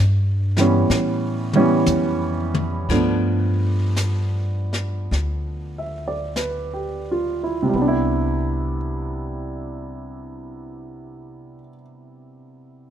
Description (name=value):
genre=jazz ballad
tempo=41-65 BPM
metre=4/4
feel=swing 66% on 8ths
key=C major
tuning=A4 = 440 Hz
part: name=upright bass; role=bass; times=0.0-11.6 s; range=C2 to A2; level=-23 LUFS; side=equal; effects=none
part: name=warm upright piano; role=accompaniment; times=0.6-12.9 s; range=C3 to E5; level=-22 LUFS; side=right 2 dB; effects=none
part: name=jazz brush drum kit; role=drums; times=0.6-8.9 s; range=brushed snare drum, hi-hat, kick drum, ride cymbal, snare drum, toms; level=-28 LUFS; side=left 3 dB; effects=none
room=light reverb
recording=none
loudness=-19 LUFS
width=side -10 dB against mid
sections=0.0-2.9 A section; 2.9-7.7 B section; 7.7-12.9 C section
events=slowing down 0.0-7.7; drum fill 0.9-2.9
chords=0.0 Em; 0.9 A7; 2.9 G7; 7.7 Cmaj9